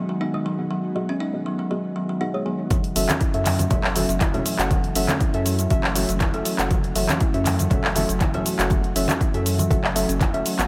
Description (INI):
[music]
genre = afro house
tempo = 120 BPM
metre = 4/4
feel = swing 53% on 16ths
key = F# dorian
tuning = A4 = 438 Hz
[part]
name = ethereal airy pad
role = sustained chords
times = 0.0-10.7 s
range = D#3 to F#4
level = -34 LUFS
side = equal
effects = ensemble chorus, built-in reverb, sidechain pumping
[part]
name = kalimba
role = arpeggios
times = 0.0-10.7 s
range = E3 to E4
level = -30 LUFS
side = equal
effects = sidechain pumping
[part]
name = deep mellow chord stab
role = stabs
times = 0.0-10.7 s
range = B3 to G#5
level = -30 LUFS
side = equal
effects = chorus, cassette tape, sidechain pumping, dub echo
[part]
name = deep house drum kit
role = drums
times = 2.7-10.7 s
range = handclaps, hi-hat, shaker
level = -28 LUFS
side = equal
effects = none
[part]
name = electronic kick drum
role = drums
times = 2.7-10.3 s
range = none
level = -25 LUFS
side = equal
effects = none
[part]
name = congas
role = percussion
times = 2.7-10.3 s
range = none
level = -32 LUFS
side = equal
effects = none
[part]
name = round analog bass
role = bass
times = 3.0-10.7 s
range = F#1 to F#2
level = -29 LUFS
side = equal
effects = sidechain pumping
[sound]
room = light reverb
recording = none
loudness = -22 LUFS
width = mono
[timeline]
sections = 0.0-2.7 A section; 2.7-10.7 B section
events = drop 2.7-10.7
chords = 0.0 G#m7; 2.7 F#m7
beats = 0.21 | 0.71 1.21 1.71 2.21 | 2.71 3.21 3.71 4.21 | 4.71 5.21 5.71 6.21 | 6.71 7.21 7.71 8.21 | 8.71 9.21 9.71 10.21